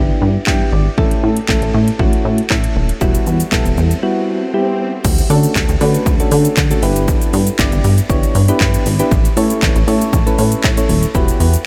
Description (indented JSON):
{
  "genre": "dance-pop",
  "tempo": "118 BPM",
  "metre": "4/4",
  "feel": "straight",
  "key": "D major",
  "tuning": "A4 = 441 Hz",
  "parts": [
    { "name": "soft electric-piano-like synth keys", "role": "accompaniment", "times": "0.0-11.5 s", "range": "G3 to G5", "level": "-20 LUFS", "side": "equal", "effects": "chorus, sidechain pumping" },
    { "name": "plucky analog bass", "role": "bass", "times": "0.0-11.6 s", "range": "Eb1 to D3", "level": "-18 LUFS", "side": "equal", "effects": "sidechain pumping" },
    { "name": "house drum kit", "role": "drums", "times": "0.5-11.6 s", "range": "crash cymbal, handclaps, hi-hat, kick drum, shaker", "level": "-19 LUFS", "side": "equal", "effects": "overdrive" },
    { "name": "swell", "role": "sound effects", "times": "4.0-5.0 s", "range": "none", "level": "-32 LUFS", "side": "equal", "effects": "none" }
  ],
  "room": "light reverb",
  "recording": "none",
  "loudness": "-14 LUFS",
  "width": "mono",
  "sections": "0.0-5.0 A section; 5.0-11.7 B section",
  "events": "synth keys fill 0.2-1.0; swell 4.0-5.0; break 4.0-5.0",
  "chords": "0.0 G6; 1.0 A; 3.0 Emadd9; 5.0 Dmaj7; 6.8 G6; 9.1 A; 11.1 Emadd9",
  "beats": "0.47 | 0.98 1.49 2.00 2.50 | 3.01 3.52 4.03 4.54 | 5.05 5.55 6.06 6.57 | 7.08 7.59 8.10 8.61 | 9.11 9.62 10.13 10.64 | 11.15"
}